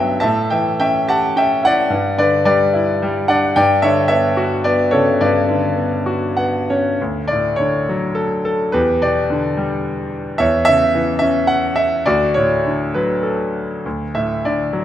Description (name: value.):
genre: classical, lyrical solo piano.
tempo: 93-112 BPM.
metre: 3/4.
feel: rubato.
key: D major.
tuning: A4 = 442 Hz.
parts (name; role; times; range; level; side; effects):
bright grand piano; solo; 0.0-14.8 s; D2 to A5; -14 LUFS; equal; none.
room: moderate concert hall reverb, RT60 2.4 s.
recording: minimal, uncompressed stereo recording.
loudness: -15 LUFS.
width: side -11 dB against mid.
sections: 0.0-7.0 A section; 7.0-14.8 B section.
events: grand piano fill 6.1-7.0.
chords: 0.2 A7; 1.9 Em7/G; 3.6 Gmaj9#11; 7.0 Dmaj7; 8.7 Em7; 10.4 C#madd11/E; 12.1 D.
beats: | 0.22 0.80 1.35 | 1.90 2.45 3.00 | 3.55 4.09 4.64 | 5.20 5.76 6.37 | 6.99 7.58 8.16 | 8.73 9.29 9.84 | 10.39 10.94 11.50 | 12.07 12.65 13.24 | 13.85 14.45.